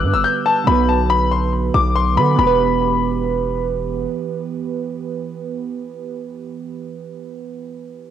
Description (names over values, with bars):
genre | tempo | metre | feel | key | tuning
hip hop, trap | 140 BPM | 4/4 | half-time | E minor | A4 = 440 Hz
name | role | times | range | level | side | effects
bright concert grand piano | melody | 0.0-3.6 s | A5 to G6 | -18 LUFS | left 6 dB | cassette tape, analog delay
glassy digital keys | accompaniment | 0.0-8.1 s | D3 to B4 | -22 LUFS | right 8 dB | chorus, cassette tape
hard-hitting 808-style bass | bass | 0.0-4.1 s | E1 to D3 | -20 LUFS | equal | none
room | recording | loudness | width
light reverb, studio reverb | home recording on cassette | -16 LUFS | side -9 dB against mid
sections
0.0-2.4 A section; 2.4-5.8 B section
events
none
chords
0.0 G; 0.7 Bm; 2.4 Em